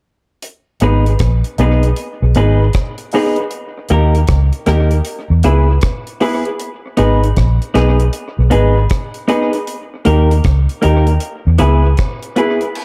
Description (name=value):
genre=roots reggae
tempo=78 BPM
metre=4/4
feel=swing 63% on 16ths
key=G# harmonic minor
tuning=A4 = 437 Hz
part: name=deep reggae drum kit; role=drums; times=0.4-12.8 s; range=crash cymbal, hi-hat, kick drum, rim click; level=-22 LUFS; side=equal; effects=analog delay
part: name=semi-hollow electric guitar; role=accompaniment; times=0.8-12.6 s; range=A#3 to B4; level=-21 LUFS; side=equal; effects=tape echo
part: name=warm upright piano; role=stabs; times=0.8-12.6 s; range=D#4 to B4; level=-22 LUFS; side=equal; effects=none
part: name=vintage muted fingered electric bass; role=bass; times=0.8-11.9 s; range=G#1 to E2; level=-14 LUFS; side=equal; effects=none
room=light reverb, studio ambience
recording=echo-heavy mix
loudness=-14 LUFS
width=mono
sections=0.4-12.8 A section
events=none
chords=0.4 G#m; 3.5 D#; 5.0 E; 6.6 G#m; 9.7 D#; 11.2 E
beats=| 0.43 1.20 1.97 2.74 | 3.51 4.28 5.05 5.82 | 6.59 7.36 8.13 8.90 | 9.67 10.44 11.21 11.98 | 12.75